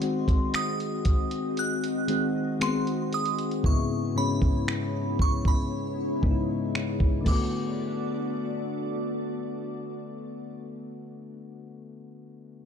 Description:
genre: contemporary R&B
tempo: 58 BPM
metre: 4/4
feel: straight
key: B dorian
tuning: A4 = 439 Hz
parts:
  - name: glassy synth bell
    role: melody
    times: 0.0-10.4 s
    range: B5 to F#6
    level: -34 LUFS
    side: right 2 dB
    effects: chorus, phaser, ping-pong delay
  - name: soft electric-piano-like synth keys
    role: accompaniment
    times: 0.0-12.7 s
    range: G#2 to F#4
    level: -30 LUFS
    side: left 2 dB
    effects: chorus
  - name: glassy FM pad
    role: sustained chords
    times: 0.0-10.4 s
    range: G#2 to D#5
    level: -33 LUFS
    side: left 1 dB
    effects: ensemble chorus, built-in reverb
  - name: dusty soul sampler-style drum kit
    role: drums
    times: 0.0-7.5 s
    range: crash cymbal, finger snaps, hi-hat, kick drum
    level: -26 LUFS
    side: equal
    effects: none
room: little or no reverb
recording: dark, warm production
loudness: -25 LUFS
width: side -8 dB against mid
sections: 0.0-7.8 A section; 7.8-11.9 B section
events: none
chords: 0.0 G#7; 3.6 C#m7/G#; 7.3 Bm7

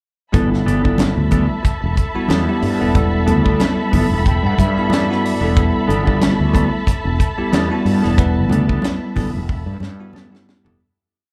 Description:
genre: electric jazz fusion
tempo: 92 BPM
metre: 4/4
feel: swing 56% on 16ths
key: G major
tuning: A4 = 440 Hz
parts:
  - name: bell-like tine electric piano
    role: accompaniment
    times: 0.3-10.8 s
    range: G3 to A5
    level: -24 LUFS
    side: equal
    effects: none
  - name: muted studio string section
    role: sustained chords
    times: 0.3-10.8 s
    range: A4 to B5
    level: -27 LUFS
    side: equal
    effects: none
  - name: mellow electric guitar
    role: stabs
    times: 0.3-10.8 s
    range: E3 to A4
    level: -26 LUFS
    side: equal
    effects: subtle chorus
  - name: fretless electric bass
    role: bass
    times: 0.3-10.8 s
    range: E1 to G2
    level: -21 LUFS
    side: equal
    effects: none
  - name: tight funk drum kit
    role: drums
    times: 0.3-10.8 s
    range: hi-hat, kick drum, snare drum, toms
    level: -21 LUFS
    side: equal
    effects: none
  - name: congas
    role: percussion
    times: 0.3-10.6 s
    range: none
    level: -27 LUFS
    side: equal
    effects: none
room: small room ambience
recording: live gig heard through the venue's PA, club reverb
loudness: -17 LUFS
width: mono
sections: 0.3-10.8 groove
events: tine electric piano fill 3.6-5.6; fade-out 8.2-10.8; drum fill 9.5-10.8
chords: 0.3 G69

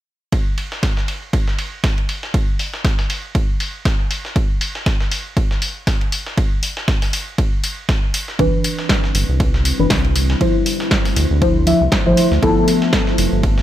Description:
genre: deep house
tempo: 119 BPM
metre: 4/4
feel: swing 56% on 16ths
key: C major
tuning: A4 = 440 Hz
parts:
  - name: dusty soul sampler-style drum kit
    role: drums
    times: 0.3-13.6 s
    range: hi-hat, ride cymbal, snare drum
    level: -27 LUFS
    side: right 1 dB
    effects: sidechain pumping on cymbals, high-pass filter on cymbals, high-pass filter on snare, sidechain pumping on hats, high-pass filter on hats, high-pass filter on room
  - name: electronic kick drum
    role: drums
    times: 0.3-13.5 s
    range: none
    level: -18 LUFS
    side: equal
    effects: none
  - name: punchy analog drum machine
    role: drums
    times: 0.6-13.3 s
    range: hi-hat, snare drum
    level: -22 LUFS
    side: left 1 dB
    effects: low-pass filter on hats, low-pass filter on snare, low-pass filter on room
  - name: deep dark ambient pad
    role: sustained chords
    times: 9.1-13.6 s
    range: F3 to C5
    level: -24 LUFS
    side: left 1 dB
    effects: chorus, built-in reverb, vintage 12-bit sampler grit, sidechain pumping
  - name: deep mellow chord stab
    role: stabs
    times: 8.4-13.6 s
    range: E3 to E5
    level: -18 LUFS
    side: left 1 dB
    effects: chorus, phaser, sidechain pumping, dub echo
  - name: round analog bass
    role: bass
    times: 8.4-13.6 s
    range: F1 to D2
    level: -18 LUFS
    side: equal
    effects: sidechain pumping
room: digital ambience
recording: none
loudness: -15 LUFS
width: side -12 dB against mid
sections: 0.3-13.6 A section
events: filter sweep on drum 0.3-13.6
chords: 0.3 N.C.; 8.4 Cmaj9; 10.4 Dm9; 12.4 G13

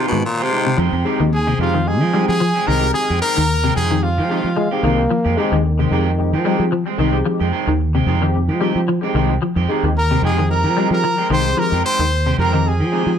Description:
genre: afrobeat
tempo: 111 BPM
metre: 4/4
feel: swing 56% on 16ths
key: F minor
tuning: A4 = 439 Hz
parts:
  - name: raspy baritone saxophone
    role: melody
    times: 0.0-0.8 s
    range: Bb2 to C3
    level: -21 LUFS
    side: left 2 dB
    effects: plate reverb, tape echo
  - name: barky tine electric piano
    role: accompaniment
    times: 0.0-13.1 s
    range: Ab3 to G4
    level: -25 LUFS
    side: left 2 dB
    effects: ensemble chorus
  - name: electric guitar at the edge of break-up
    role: stabs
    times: 0.0-13.1 s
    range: Eb3 to G4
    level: -24 LUFS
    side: right 6 dB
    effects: none
  - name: clean electric guitar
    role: arpeggios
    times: 0.1-12.7 s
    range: C3 to G3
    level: -22 LUFS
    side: left 4 dB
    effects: ensemble chorus, tape echo
  - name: fingered electric bass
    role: bass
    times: 0.1-13.2 s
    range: C2 to F3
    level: -19 LUFS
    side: right 1 dB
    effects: none
  - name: bright trumpet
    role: melody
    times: 1.3-4.8, 10.0-13.2 s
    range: F4 to C5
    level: -21 LUFS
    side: left 2 dB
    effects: none
  - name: bright reedy soprano recorder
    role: second line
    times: 1.3-4.8, 10.0-13.2 s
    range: F5 to C6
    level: -25 LUFS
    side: right 4 dB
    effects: none
  - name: mellow bass trombone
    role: second line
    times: 4.6-6.7 s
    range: Eb3 to Bb3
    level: -21 LUFS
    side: left 2 dB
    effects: none
room: moderate club reverb, RT60 0.6 s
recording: none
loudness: -15 LUFS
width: side -8 dB against mid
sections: 0.8-13.2 A section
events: none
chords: 0.0 Fm9

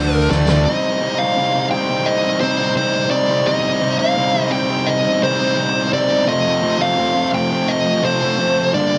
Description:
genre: quiet-loud alternative rock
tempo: 85 BPM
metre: 4/4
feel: straight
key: unclear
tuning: A4 = 442 Hz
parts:
  - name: dark smooth lead guitar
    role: melody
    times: 0.0-9.0 s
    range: C5 to G5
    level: -20 LUFS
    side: equal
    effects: overdrive
  - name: distorted electric guitar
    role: riff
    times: 0.0-0.6 s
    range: D3 to D4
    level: -31 LUFS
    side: equal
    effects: none
  - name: fuzz guitar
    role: riff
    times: 0.0-0.6 s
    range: D3 to D4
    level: -29 LUFS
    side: equal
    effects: distortion
  - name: thick fuzz guitar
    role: riff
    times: 0.0-9.0 s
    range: F2 to Eb4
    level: -21 LUFS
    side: equal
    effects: distortion
  - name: fuzz fingered electric bass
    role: bass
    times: 0.0-0.7 s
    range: D2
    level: -20 LUFS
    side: equal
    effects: overdrive
  - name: snare drum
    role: drums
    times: 0.3-0.6 s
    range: none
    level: -24 LUFS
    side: equal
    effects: none
room: moderate small room reverb, RT60 0.5 s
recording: nothing above 10.5 kHz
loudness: -17 LUFS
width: mono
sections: 0.7-9.0 A section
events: drum fill 0.3-0.7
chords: 0.0 D5; 0.7 Cm; 6.3 F

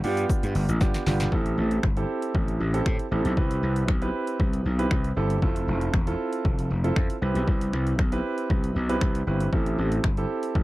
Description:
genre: dance-pop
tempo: 117 BPM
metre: 4/4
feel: straight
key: A minor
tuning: A4 = 440 Hz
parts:
  - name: warm concert grand piano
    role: accompaniment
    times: 0.0-10.6 s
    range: B3 to B4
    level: -29 LUFS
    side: right 2 dB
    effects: sidechain pumping
  - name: gritty slap bass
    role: bass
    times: 0.0-10.6 s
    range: E1 to A2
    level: -25 LUFS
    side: equal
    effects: overdrive, sidechain pumping
  - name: punchy analog drum machine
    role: drums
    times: 0.0-10.6 s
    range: finger snaps, hi-hat, kick drum, shaker, snare drum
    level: -25 LUFS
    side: equal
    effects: overdrive
room: little or no reverb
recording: dry, close 1970s-style studio recording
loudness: -22 LUFS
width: side -18 dB against mid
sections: 0.0-1.3 A section; 1.3-10.6 B section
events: drum fill 0.8-1.3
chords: 0.0 G7; 1.3 Am7; 5.4 Fmaj7; 7.2 Cmaj7; 9.5 Am7

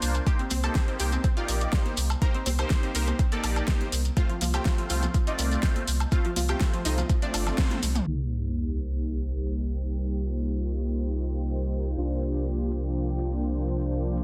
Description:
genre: progressive house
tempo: 123 BPM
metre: 4/4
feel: straight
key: C dorian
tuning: A4 = 441 Hz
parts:
  - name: analog pluck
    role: arpeggios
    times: 0.0-8.0 s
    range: F3 to D5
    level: -37 LUFS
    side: equal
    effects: ensemble chorus, sidechain pumping, dub echo
  - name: soft supersaw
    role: stabs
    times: 0.0-14.2 s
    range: A3 to D5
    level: -35 LUFS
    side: equal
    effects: phaser, cassette tape, sidechain pumping, low-pass filter, dub echo
  - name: saturated sub bass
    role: bass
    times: 0.0-14.2 s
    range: G1 to C2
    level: -30 LUFS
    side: equal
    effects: sidechain pumping
  - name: deep house drum kit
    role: drums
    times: 0.0-8.2 s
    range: crash cymbal, hi-hat, snare drum, toms, woodblock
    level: -35 LUFS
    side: equal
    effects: overdrive
  - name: shekere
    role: percussion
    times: 0.0-14.2 s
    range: none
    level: -39 LUFS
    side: equal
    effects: none
  - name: woodblock, congas and cowbell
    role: percussion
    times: 0.1-8.0 s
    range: none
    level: -42 LUFS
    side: equal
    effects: sidechain pumping on perc
  - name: electronic kick drum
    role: drums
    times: 0.3-7.7 s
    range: none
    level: -27 LUFS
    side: equal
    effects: none
  - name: warm analog pad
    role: sustained chords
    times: 8.1-14.2 s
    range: C3 to G4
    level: -37 LUFS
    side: equal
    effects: chorus, sidechain pumping
  - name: sub drop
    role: sound effects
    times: 8.1-10.0 s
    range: none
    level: -37 LUFS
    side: equal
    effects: none
  - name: backwards swelling texture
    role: texture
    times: 9.2-14.2 s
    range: G4 to G5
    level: -46 LUFS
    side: equal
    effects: built-in reverb, sidechain pumping
room: light reverb, digital ambience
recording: dense, heavily limited modern master, low-pass filter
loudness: -27 LUFS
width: mono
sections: 0.0-8.1 A section; 8.1-14.2 B section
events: drum fill 7.6-8.1; band accent 7.6; impact 8.1-10.0; filter sweep on analog synth pad 8.1-14.2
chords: 0.3 Cm7; 4.2 F/C; 8.1 Cm7; 12.0 Bbadd9/C

